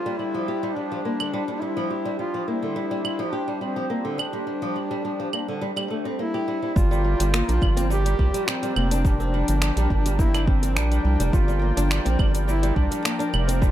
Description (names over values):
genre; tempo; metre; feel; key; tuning
organic downtempo; 105 BPM; 4/4; straight; G dorian; A4 = 440 Hz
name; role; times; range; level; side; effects
warm duduk; melody; 0.0-13.7 s; C4 to G4; -28 LUFS; left 1 dB; tape echo
warm analog pad; sustained chords; 0.0-13.7 s; F3 to G5; -33 LUFS; equal; chorus, tremolo, sidechain pumping
flamenco guitar; arpeggios; 0.1-13.7 s; D3 to G4; -29 LUFS; equal; tape echo
deep house drum kit; drums; 1.2-13.7 s; claves, finger snaps, hi-hat, shaker; -29 LUFS; right 2 dB; overdrive, analog delay
round analog bass; bass; 6.8-13.7 s; F1 to C2; -22 LUFS; equal; sidechain pumping
electronic kick drum; drums; 6.8-13.7 s; none; -22 LUFS; equal; overdrive
room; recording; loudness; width
light reverb; echo-heavy mix; -21 LUFS; side -12 dB against mid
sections
0.0-6.8 A section; 6.8-13.7 B section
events
none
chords
0.0 G7(no3); 6.8 Gm7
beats
0.48 1.05 1.62 | 2.19 2.76 3.34 3.91 | 4.48 5.05 5.62 6.19 | 6.76 7.34 7.91 8.48 | 9.05 9.62 10.19 10.76 | 11.34 11.91 12.48 13.05 | 13.62